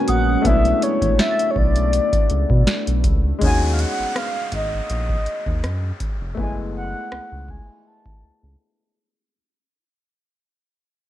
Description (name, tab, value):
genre	contemporary R&B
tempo	81 BPM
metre	4/4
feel	swing 54% on 16ths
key	unclear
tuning	A4 = 440 Hz
part	mellow horn-like synth lead	melody	0.0-8.9 s	C#5 to A5	-24 LUFS	equal	chorus, low-pass filter
part	clear grand piano	accompaniment	0.0-9.4 s	Ab3 to Gb4	-26 LUFS	left 5 dB	low-pass filter
part	deep dark ambient pad	sustained chords	0.0-3.4 s	Ab3 to Gb4	-27 LUFS	right 1 dB	chorus, built-in reverb
part	round analog bass	bass	0.1-8.6 s	F1 to B2	-22 LUFS	equal	none
part	booming analog drum machine	drums	0.1-8.2 s	hi-hat, kick drum, rim click, snare drum	-21 LUFS	equal	overdrive
part	synth chime	texture	0.1-2.5 s	Eb6 to A6	-33 LUFS	right 2 dB	ensemble chorus, ping-pong delay
part	downlifter	sound effects	3.4-9.3 s	none	-33 LUFS	left 1 dB	none
room	digital ambience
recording	worn, warbling old tape, cassette tape, warbly pitch drift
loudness	-17 LUFS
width	side -13 dB against mid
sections	0.0-3.4 A section; 3.4-9.3 B section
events	fade-out 3.4-9.3; filter sweep 3.4-9.3; break 8.6-9.3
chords	0.4 Bm11; 3.4 Ebm11; 6.4 Gbm11